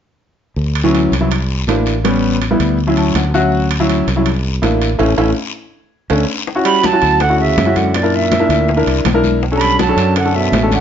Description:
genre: Afro-Cuban jazz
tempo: 163 BPM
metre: 4/4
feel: straight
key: D major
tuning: A4 = 440 Hz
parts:
  - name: fretless electric bass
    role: bass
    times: 0.6-10.8 s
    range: A1 to F#2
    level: -17 LUFS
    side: equal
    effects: none
  - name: guiro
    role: percussion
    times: 0.6-10.8 s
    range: none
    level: -28 LUFS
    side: left 6 dB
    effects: none
  - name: warm concert grand piano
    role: accompaniment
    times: 0.8-10.8 s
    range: E3 to A5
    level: -16 LUFS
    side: left 1 dB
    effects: none
  - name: timbales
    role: percussion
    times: 0.8-10.8 s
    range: none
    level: -23 LUFS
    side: right 6 dB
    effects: none
  - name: bongos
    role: percussion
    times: 6.5-10.8 s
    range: none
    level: -23 LUFS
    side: left 6 dB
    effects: none
  - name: congas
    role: percussion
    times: 6.5-10.8 s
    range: none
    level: -23 LUFS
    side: left 3 dB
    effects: none
  - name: warm tenor saxophone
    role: second line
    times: 6.6-10.8 s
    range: A#2 to G3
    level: -20 LUFS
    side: right 4 dB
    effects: none
  - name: breathy bright concert flute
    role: melody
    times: 6.7-10.8 s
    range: D5 to B5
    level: -16 LUFS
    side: right 4 dB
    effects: slapback echo, plate reverb
room: moderate studio reverb, RT60 0.9 s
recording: nothing above 7.6 kHz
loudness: -12 LUFS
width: side -8 dB against mid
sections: 0.6-6.5 A section; 6.5-10.8 B section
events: grand piano fill 2.8-3.5; drum fill 5.0-6.5; band accent 5.0-6.5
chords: 0.6 Dmaj7; 1.3 C7; 2.0 A7; 2.8 Dmaj7; 4.3 C7; 5.0 A; 5.7 D5; 6.5 Dmaj9; 7.9 F#aug7; 9.4 Bm7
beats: | 0.57 0.94 1.31 1.68 | 2.04 2.41 2.78 3.15 | 3.52 3.89 4.26 4.63 | 5.00 5.37 5.74 6.10 | 6.47 6.84 7.21 7.58 | 7.95 8.32 8.69 9.05 | 9.42 9.79 10.16 10.53

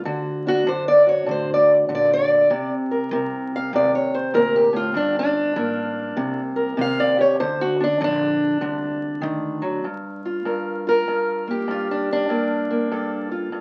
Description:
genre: acoustic country blues, solo or duo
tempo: 98 BPM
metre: 4/4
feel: swing 64% on 8ths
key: G minor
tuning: A4 = 440 Hz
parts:
  - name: fingerpicked steel-string acoustic guitar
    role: melody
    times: 0.0-13.6 s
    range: G2 to F5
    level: -21 LUFS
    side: equal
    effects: none
  - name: upright bass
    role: bass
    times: 0.0-9.8 s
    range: G1 to C3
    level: -38 LUFS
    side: equal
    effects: none
room: moderate club reverb, RT60 0.6 s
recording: very old 78 rpm record, vinyl crackle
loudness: -21 LUFS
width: mono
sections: 0.0-9.8 A section; 9.8-13.6 B section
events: steel-string acoustic guitar solo 0.0-9.8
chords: 0.1 D; 2.5 Cm9; 5.0 Gmadd9; 6.2 Cm7; 7.4 D7(no3); 9.8 Gm7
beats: | 0.07 0.68 1.29 1.90 | 2.51 3.12 3.73 4.34 | 4.95 5.56 6.17 6.79 | 7.40 8.01 8.62 9.23 | 9.85 10.46 11.07 11.68 | 12.30 12.91 13.53

